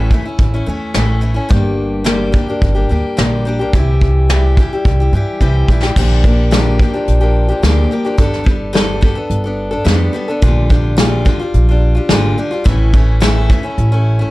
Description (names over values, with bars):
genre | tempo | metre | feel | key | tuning
folk rock and heartland rock | 108 BPM | 4/4 | straight | unclear | A4 = 440 Hz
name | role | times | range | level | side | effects
picked steel-string acoustic guitar | accompaniment | 0.0-14.3 s | G2 to A4 | -18 LUFS | left 2 dB | none
upright bass | bass | 0.0-14.2 s | G1 to G2 | -14 LUFS | equal | none
soft brush drum kit | drums | 0.1-13.9 s | crash cymbal, hi-hat, kick drum, snare drum | -14 LUFS | equal | none
room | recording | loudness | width
little or no reverb | dark, warm production | -11 LUFS | side -19 dB against mid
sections
0.0-6.0 A section; 6.0-14.3 B section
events
drum fill 5.4-6.0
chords
0.0 A; 1.5 Gm; 3.7 C; 6.0 Bb6; 8.2 Gadd9; 10.4 Bb6; 12.7 A